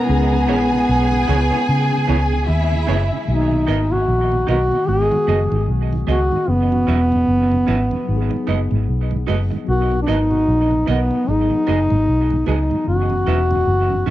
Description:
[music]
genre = reggae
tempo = 75 BPM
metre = 4/4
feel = swing 58% on 16ths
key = B major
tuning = A4 = 441 Hz
[part]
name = mellow duduk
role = melody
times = 0.0-14.1 s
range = B3 to G#4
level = -19 LUFS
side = equal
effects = tape echo
[part]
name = warm studio string section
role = second line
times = 0.0-3.3 s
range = E4 to G#5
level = -22 LUFS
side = equal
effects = tape echo
[part]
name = mellow tine electric piano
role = accompaniment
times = 0.0-14.1 s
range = D#3 to A#4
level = -28 LUFS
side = left 8 dB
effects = medium stereo tremolo
[part]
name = vintage muted fingered electric bass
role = bass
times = 0.1-14.1 s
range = E1 to C#3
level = -19 LUFS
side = equal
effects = none
[part]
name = mellow tonewheel organ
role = accompaniment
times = 0.3-14.1 s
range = F#2 to C#4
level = -27 LUFS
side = right 5 dB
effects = slow rotary speaker
[part]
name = electric guitar through a small old amp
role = stabs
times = 0.5-14.1 s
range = B3 to E5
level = -28 LUFS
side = right 8 dB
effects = tremolo, tape echo, plate reverb
[sound]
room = moderate studio ambience, RT60 0.5 s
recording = home recording on cassette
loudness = -15 LUFS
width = side -14 dB against mid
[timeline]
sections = 0.0-3.3 A section; 3.3-14.1 B section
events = none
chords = 0.1 C#m7; 3.3 Bmaj7; 4.9 G#m7; 6.5 F#7sus4; 8.1 G#m7; 9.7 Bmaj7; 11.3 G#m7; 12.9 F#7sus4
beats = | 0.08 0.88 1.68 2.47 | 3.27 4.07 4.87 5.67 | 6.47 7.27 8.07 8.87 | 9.67 10.47 11.27 12.07 | 12.87 13.67

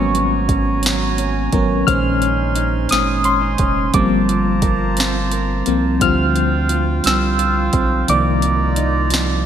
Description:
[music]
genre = slow six-eight R&B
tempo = 58 BPM (dotted quarters)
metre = 6/8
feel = straight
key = unclear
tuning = A4 = 438 Hz
[part]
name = mellow electric guitar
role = second line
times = 0.0-9.5 s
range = Ab2 to Bb4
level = -22 LUFS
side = right 4 dB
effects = spring reverb, ping-pong delay
[part]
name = FM electric piano with auto-pan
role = accompaniment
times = 0.0-9.5 s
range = Eb3 to F6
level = -18 LUFS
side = left 3 dB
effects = none
[part]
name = hand-pumped harmonium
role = sustained chords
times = 0.0-9.5 s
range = Db4 to C6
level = -25 LUFS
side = right 4 dB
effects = none
[part]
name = round analog bass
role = bass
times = 0.0-9.5 s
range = F1 to D2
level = -21 LUFS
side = equal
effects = none
[part]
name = smooth R&B drum kit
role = drums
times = 0.1-9.3 s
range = hi-hat, kick drum, snare drum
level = -21 LUFS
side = equal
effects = overdrive
[sound]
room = moderate lush hall reverb, RT60 2.7 s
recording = bright 1980s-style digital production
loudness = -14 LUFS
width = side -9 dB against mid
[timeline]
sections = 0.0-9.5 A section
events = FM electric piano solo 0.0-9.5; kick muted 8.1-9.5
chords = 0.0 Abm11; 1.9 Bbm11; 3.9 Gm11; 6.0 Dm11; 8.1 Cm11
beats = 0.84 | 1.88 2.91 | 3.94 4.98 | 6.01 7.05 | 8.08 9.12

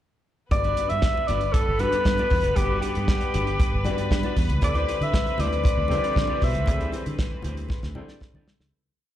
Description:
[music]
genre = disco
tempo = 117 BPM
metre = 4/4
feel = straight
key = G major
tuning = A4 = 442 Hz
[part]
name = breathy alto saxophone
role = melody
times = 0.5-6.9 s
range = G4 to E5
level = -26 LUFS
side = equal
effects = slapback echo
[part]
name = dark grand piano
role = accompaniment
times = 0.5-8.8 s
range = G3 to B4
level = -35 LUFS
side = left 6 dB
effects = slapback echo
[part]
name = mellow electric guitar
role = accompaniment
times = 0.5-8.7 s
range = D4 to D5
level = -37 LUFS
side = right 2 dB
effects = spring reverb, slapback echo
[part]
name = warm studio string section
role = sustained chords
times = 0.5-8.7 s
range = E3 to B4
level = -32 LUFS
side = left 3 dB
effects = none
[part]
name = fingered electric bass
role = bass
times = 0.5-8.7 s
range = F#1 to D3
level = -27 LUFS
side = equal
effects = none
[part]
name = damped 70s drum kit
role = drums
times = 0.5-8.7 s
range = hi-hat, kick drum, snare drum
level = -24 LUFS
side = equal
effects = none
[part]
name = congas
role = percussion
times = 0.5-8.6 s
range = none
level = -37 LUFS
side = left 4 dB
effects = none
[sound]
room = studio reverb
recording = live gig heard through the venue's PA, club reverb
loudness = -21 LUFS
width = side -12 dB against mid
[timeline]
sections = 0.5-8.7 groove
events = fade-out 6.7-8.7; drum fill 7.7-8.7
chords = 0.5 Gmaj7; 4.6 D9sus4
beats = | 0.51 1.03 1.54 2.06 | 2.57 3.08 3.59 4.11 | 4.62 5.13 5.64 6.16 | 6.67 7.18 7.70 8.21

